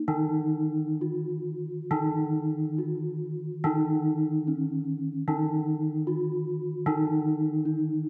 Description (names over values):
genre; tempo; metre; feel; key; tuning
gamelan; 64-78 BPM; 4/4; straight; unclear; A4 = 439 Hz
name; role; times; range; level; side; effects
gamelan-type bronze metallophone; melody; 0.0-8.1 s; Db4-25c to Gb4-45c; -30 LUFS; equal; none
gamelan-type bronze metallophone; accompaniment; 0.0-8.1 s; Eb3; -33 LUFS; equal; none
room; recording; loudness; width
wet scoring stage reverb, RT60 1.7 s; dark, warm production; -28 LUFS; mono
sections
0.0-6.9 A section; 6.9-8.1 B section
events
none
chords
none